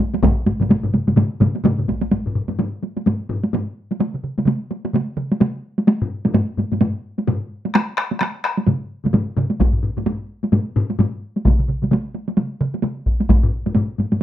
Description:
japanese traditional, taiko drum ensemble; 129 BPM; 4/4; swing 60% on 16ths
taiko ensemble; percussion; 0.0-14.2 s; -18 LUFS; right 1 dB
taiko ensemble; percussion; 0.2-14.2 s; -22 LUFS; left 2 dB
taiko ensemble; percussion; 0.2-13.0 s; -23 LUFS; right 2 dB
taiko ensemble; percussion; 0.2-2.0, 9.6-13.4 s; -19 LUFS; equal
moderate studio reverb, RT60 0.6 s; rough home demo mix; -18 LUFS; side -12 dB against mid
0.0-2.1 A section; 2.1-14.2 B section
speeding up 0.0-14.2

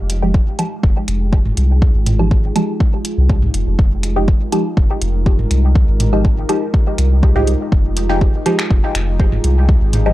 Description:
dub techno; 122 BPM; 4/4; straight; F minor; A4 = 440 Hz
deep dark ambient pad; sustained chords; 0.0-10.1 s; Ab3 to Bb4; -25 LUFS; right 1 dB; chorus, built-in reverb, sidechain pumping
soft dub sub bass; bass; 0.0-10.1 s; F1 to C2; -16 LUFS; equal; sidechain pumping
deep house drum kit; drums; 0.1-10.0 s; finger snaps, hi-hat; -24 LUFS; equal; overdrive
filtered dub chord stab; stabs; 0.2-10.1 s; F3 to G4; -21 LUFS; equal; phaser, sidechain pumping, dub echo
electronic kick drum; drums; 0.3-9.8 s; -14 LUFS; equal; overdrive
electronic woodblock and toms; percussion; 0.6-10.1 s; -24 LUFS; right 2 dB; sidechain pumping on perc, sidechain pumping on toms, dub echo
little or no reverb; dry, gritty hardware recording, cassette tape; -13 LUFS; side -16 dB against mid
0.0-10.1 A section
0.0 Fm9

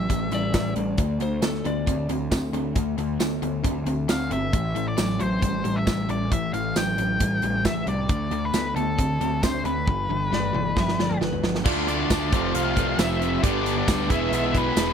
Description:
classic rock; 135 BPM; 4/4; straight; A4 = 441 Hz
octave-fuzz lead guitar; melody; 0.0-0.7, 4.1-14.9 s; A4 to G5; -28 LUFS; left 2 dB; distortion, slapback echo
crunchy overdriven guitar; riff; 0.0-14.9 s; E2 to G#4; -29 LUFS; left 15 dB
overdriven semi-hollow guitar; riff; 0.0-14.9 s; G2 to F4; -29 LUFS; right 15 dB
fuzz picked electric bass; bass; 0.0-14.9 s; E1 to D2; -30 LUFS; equal; overdrive
big rock drum kit; drums; 0.1-14.9 s; crash cymbal, hi-hat, kick drum, snare drum, tambourine, toms; -26 LUFS; right 1 dB
electric slide guitar; second line; 0.3-2.1, 10.3-11.6 s; A4 to E5; -32 LUFS; left 5 dB
overdriven reed electric piano; accompaniment; 11.7-14.9 s; D4 to D5; -34 LUFS; right 11 dB; fast tremolo
tonewheel organ; sustained chords; 11.7-14.9 s; C4 to B4; -36 LUFS; right 2 dB
crunchy overdriven guitar; riff; 11.7-14.9 s; E2 to D4; -31 LUFS; equal
little or no reverb; dry, close 1970s-style studio recording; -22 LUFS; side -8 dB against mid
0.0-11.7 A section; 11.7-14.9 B section
drum fill 9.9-11.7
0.0 A5; 1.0 D5; 4.5 A5; 8.1 D5; 9.9 G; 11.7 Dm; 12.3 F; 13.4 G; 14.1 E

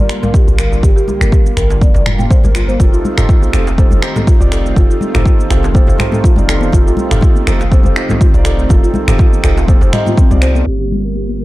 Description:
afro house; 122 BPM; 4/4; swing 54% on 16ths; A4 = 440 Hz
warm analog pad; sustained chords; 0.0-11.4 s; D3 to F4; -22 LUFS; right 1 dB; chorus, sidechain pumping
buzzing marimba with soft mallets; arpeggios; 0.0-11.4 s; C4 to G5; -21 LUFS; equal; sidechain pumping, low-pass filter, digital delay
warm 808-style bass; bass; 0.0-11.4 s; F1 to C2; -15 LUFS; equal; sidechain pumping
afro-pop drum kit; drums; 0.1-11.4 s; cabasa, finger snaps, hi-hat, toms; -20 LUFS; equal
congas; percussion; 0.2-11.4 s; -23 LUFS; left 3 dB
djembe; percussion; 0.2-10.5 s; -21 LUFS; equal
electronic kick drum; drums; 0.3-10.3 s; -9 LUFS; equal; overdrive
felt-muted upright piano; stabs; 2.8-10.6 s; C4 to D5; -21 LUFS; right 3 dB; sidechain pumping, digital delay
downlifter; sound effects; 10.8-11.4 s; -28 LUFS; equal
small room reverb; dark, warm production, low-pass filter; -9 LUFS; side -18 dB against mid
0.0-10.7 A section
0.0 Gm7; 2.8 F7; 10.7 Gm7

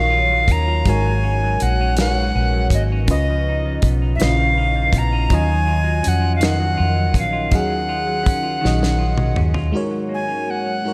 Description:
slow six-eight R&B; 54 BPM (dotted quarters); 6/8; straight; Eb minor; A4 = 440 Hz
bright reedy alto recorder; melody; 0.0-10.9 s; Eb5 to Bb5; -24 LUFS; equal; diffuse ambient delay
semi-hollow electric guitar; second line; 0.0-10.9 s; Ab2 to F4; -29 LUFS; equal; diffuse ambient delay
FM electric piano with soft pad layer; accompaniment; 0.0-10.9 s; Db3 to Eb5; -27 LUFS; equal; chorus
vintage muted fingered electric bass; bass; 0.0-9.7 s; Ab1 to F2; -22 LUFS; equal
damped 70s drum kit; drums; 0.5-9.7 s; hi-hat, kick drum, snare drum, toms; -23 LUFS; equal
moderate plate reverb, RT60 3.0 s; dreamy mix soaked in reverb; -18 LUFS; mono
0.0-9.7 A section; 9.7-10.9 B section
drum fill 8.6-9.7
0.0 Ebm9; 0.9 Ab9sus4; 3.1 Db9; 5.3 Ebm9; 9.7 Ab9sus4

